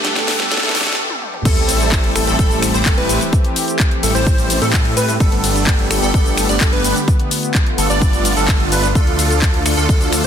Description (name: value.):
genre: EDM, festival progressive house.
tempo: 128 BPM.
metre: 4/4.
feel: straight.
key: A minor.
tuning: A4 = 442 Hz.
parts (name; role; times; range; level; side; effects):
picked steel-string acoustic guitar; accompaniment; 0.0-1.0 s; G2 to A4; -31 LUFS; right 3 dB; none.
lush unison pad; sustained chords; 0.0-10.3 s; D3 to G4; -24 LUFS; equal; chorus, sidechain pumping.
plucky unison lead; arpeggios; 0.0-10.3 s; A4 to D5; -24 LUFS; equal; cassette tape, sidechain pumping, dub echo.
supersaw chords; riff; 0.0-10.3 s; G3 to D5; -20 LUFS; right 1 dB; phaser, sidechain pumping, dub echo.
house drum kit; drums; 0.0-10.3 s; crash cymbal, finger snaps, handclaps, hi-hat, shaker, snare drum, toms; -20 LUFS; left 2 dB; overdrive.
riser and sub drop; sound effects; 0.0-3.3 s; none; -26 LUFS; left 1 dB; none.
wide detuned saw bass; bass; 1.5-10.3 s; G1 to A2; -20 LUFS; equal; chorus, sidechain pumping.
electronic kick drum; drums; 1.5-10.0 s; none; -15 LUFS; equal; overdrive.
room: light reverb.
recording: dense, heavily limited modern master, high-pass filter.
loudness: -13 LUFS.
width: side -8 dB against mid.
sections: 0.0-1.5 A section; 1.5-10.3 B section.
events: build-up 0.0-1.5; drum fill 0.0-1.0, 1.1-1.5; riser 0.0-1.0; filter sweep 0.0-1.5; break 1.0-1.5; drop 1.5-10.3; impact 1.5-3.3.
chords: 0.0 Gadd9; 1.5 Am7; 5.2 Gadd9; 9.0 Dm.